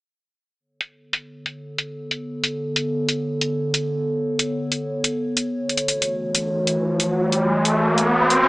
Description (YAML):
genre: glitch hop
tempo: 92 BPM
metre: 4/4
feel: swing 63% on 16ths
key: B minor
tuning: A4 = 437 Hz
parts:
  - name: warbly tape-like pad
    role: sustained chords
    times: 1.4-8.5 s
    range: D3 to C#5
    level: -23 LUFS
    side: equal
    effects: chorus, built-in reverb
  - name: electronic hi-hat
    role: drums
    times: 0.8-8.4 s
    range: none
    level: -21 LUFS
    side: equal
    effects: low-pass filter on hats
  - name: riser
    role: sound effects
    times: 6.5-8.5 s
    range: none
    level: -20 LUFS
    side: equal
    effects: none
room: moderate plate reverb, RT60 1.8 s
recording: small speaker sound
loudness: -20 LUFS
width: side -22 dB against mid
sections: 0.6-8.5 A section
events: filter sweep on ambient pad 0.6-8.5; riser 6.5-8.5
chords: 0.6 Bm9; 5.8 F#m7